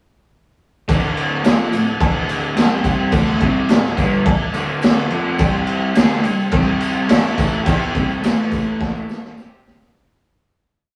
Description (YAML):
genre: garage rock duo or trio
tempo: 106 BPM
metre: 4/4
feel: straight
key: D mixolydian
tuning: A4 = 440 Hz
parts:
  - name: combo organ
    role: sustained chords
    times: 0.9-9.9 s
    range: G4 to C6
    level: -31 LUFS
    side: equal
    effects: none
  - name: raw garage guitar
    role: riff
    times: 0.9-9.9 s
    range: D2 to C5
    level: -22 LUFS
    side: equal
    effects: overdrive
  - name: raw garage drum kit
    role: drums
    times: 0.9-9.9 s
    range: crash cymbal, kick drum, snare drum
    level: -20 LUFS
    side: equal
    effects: none
  - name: tambourine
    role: percussion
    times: 0.9-9.9 s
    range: none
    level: -47 LUFS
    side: equal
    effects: none
room: moderate stone room reverb, RT60 1.3 s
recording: rough rehearsal-room recording, tube saturation, cassette tape, studio reverb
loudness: -17 LUFS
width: mono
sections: 0.9-9.9 riff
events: fade-out 7.7-9.9; transistor combo organ fill 8.2-9.9; drum fill 8.8-9.9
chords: 0.9 D; 2.6 C5; 3.1 D; 5.4 C5; 7.1 A5; 7.7 C5; 8.2 A5; 9.4 C5